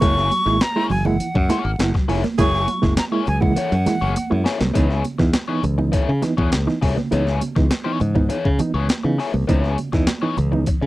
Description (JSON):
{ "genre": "funk", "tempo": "101 BPM", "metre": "4/4", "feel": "straight", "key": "C# dorian", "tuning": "A4 = 442 Hz", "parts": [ { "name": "breathy bright jazz flute", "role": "melody", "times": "0.0-4.5 s", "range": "F#5 to C#6", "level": "-23 LUFS", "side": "equal", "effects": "none" }, { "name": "crunchy overdriven guitar", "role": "accompaniment", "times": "0.0-10.9 s", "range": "A#3 to C#5", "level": "-25 LUFS", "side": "left 5 dB", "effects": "wah" }, { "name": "overdriven reed electric piano", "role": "stabs", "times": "0.0-10.9 s", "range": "C#3 to E4", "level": "-23 LUFS", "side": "right 3 dB", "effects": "fast tremolo" }, { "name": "modern bright fingered electric bass", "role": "bass", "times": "0.0-10.9 s", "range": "E#1 to C#3", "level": "-21 LUFS", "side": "equal", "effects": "none" }, { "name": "breakbeat sampler-style drum kit", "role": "drums", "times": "0.0-10.8 s", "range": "hi-hat, kick drum, snare drum", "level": "-21 LUFS", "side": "equal", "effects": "none" }, { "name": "congas", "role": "percussion", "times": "0.0-10.7 s", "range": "none", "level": "-28 LUFS", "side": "right 4 dB", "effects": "none" }, { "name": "growling tenor saxophone", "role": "second line", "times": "2.4-2.8 s", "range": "G#4", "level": "-26 LUFS", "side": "right 7 dB", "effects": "none" } ], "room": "little or no reverb", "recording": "dry, close 1970s-style studio recording", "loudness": "-17 LUFS", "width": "side -17 dB against mid", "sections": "0.0-4.8 A section; 4.8-10.9 B section", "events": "band accent 2.4-4.8; drum fill 4.2-4.8", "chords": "0.0 F#9; 4.8 C#m7", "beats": "| 0.02 0.61 1.20 1.79 | 2.39 2.98 3.57 4.16 | 4.75 5.34 5.93 6.53 | 7.12 7.71 8.30 8.89 | 9.49 10.08 10.67" }